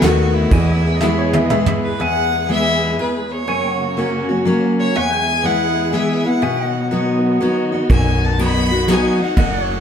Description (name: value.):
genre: honky-tonk and classic country.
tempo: 122 BPM.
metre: 3/4.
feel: swing 65% on 8ths.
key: E major.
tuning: A4 = 439 Hz.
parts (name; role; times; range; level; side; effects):
clear fiddle; melody; 0.0-9.8 s; E4 to B5; -21 LUFS; left 2 dB; none.
picked steel-string acoustic guitar; accompaniment; 0.0-9.8 s; E2 to F#4; -18 LUFS; left 2 dB; none.
pedal steel guitar; sustained chords; 0.0-9.8 s; C#5 to G#5; -28 LUFS; right 3 dB; none.
warm studio string section; sustained chords; 0.0-9.8 s; C#3 to G#4; -25 LUFS; equal; none.
woody fretless electric bass; bass; 0.0-1.7, 7.9-9.8 s; F#1 to E2; -19 LUFS; equal; none.
soft brush drum kit; drums; 0.0-1.8, 7.9-9.5 s; kick drum, ride cymbal, snare drum, toms; -19 LUFS; right 1 dB; none.
bright upright piano; second line; 1.0-1.9 s; C#5 to E5; -23 LUFS; right 4 dB; none.
room: wet stone room reverb, RT60 1.2 s.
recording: band playing live in one room.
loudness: -14 LUFS.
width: side -8 dB against mid.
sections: 0.0-2.0 A section; 2.0-9.8 A section.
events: drum fill 1.0-2.0.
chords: 0.0 B7; 0.5 E; 3.5 F#; 4.9 E; 6.4 B.